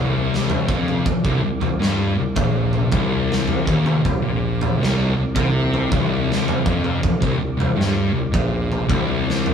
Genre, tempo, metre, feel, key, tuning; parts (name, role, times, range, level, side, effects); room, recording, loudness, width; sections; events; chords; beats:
stoner and doom metal; 80 BPM; 4/4; straight; A4 = 440 Hz
tonewheel organ; sustained chords; 0.0-9.5 s; C3 to D4; -36 LUFS; right 3 dB
thick fuzz guitar; riff; 0.0-9.5 s; C2 to C3; -22 LUFS; left 4 dB; distortion
thick fuzz guitar; riff; 0.0-9.5 s; C2 to C3; -24 LUFS; right 4 dB; distortion
dark bass clarinet; bass; 0.0-9.5 s; Bb1 to G2; -28 LUFS; right 1 dB; tube saturation
big rock drum kit; drums; 0.3-9.5 s; kick drum, snare drum, toms; -22 LUFS; right 1 dB
moderate stone room reverb, RT60 0.9 s; band playing live in one room; -17 LUFS; side -7 dB against mid
0.0-9.5 A section
0.0 C5
0.31 | 1.06 1.80 2.55 3.30 | 4.04 4.79 5.54 6.28 | 7.03 7.78 8.52 9.27